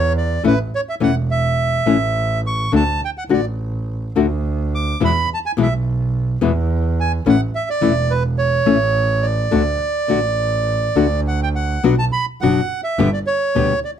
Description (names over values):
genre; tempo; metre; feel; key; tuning
tango; 105 BPM; 4/4; rubato; D major; A4 = 442 Hz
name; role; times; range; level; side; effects
bandoneon; melody; 0.0-13.9 s; B4 to D6; -20 LUFS; right 3 dB; none
rich double bass; bass; 0.0-13.8 s; E1 to E2; -20 LUFS; right 2 dB; none
nylon-string guitar; accompaniment; 0.4-13.7 s; B2 to G4; -16 LUFS; left 6 dB; none
room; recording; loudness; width
little or no reverb; close, detailed microphones; -16 LUFS; side -9 dB against mid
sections
0.0-11.8 A section; 11.8-14.0 B section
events
none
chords
0.4 A5; 2.7 D5; 5.0 E5; 7.3 A; 9.5 D5; 11.8 Bm; 13.0 G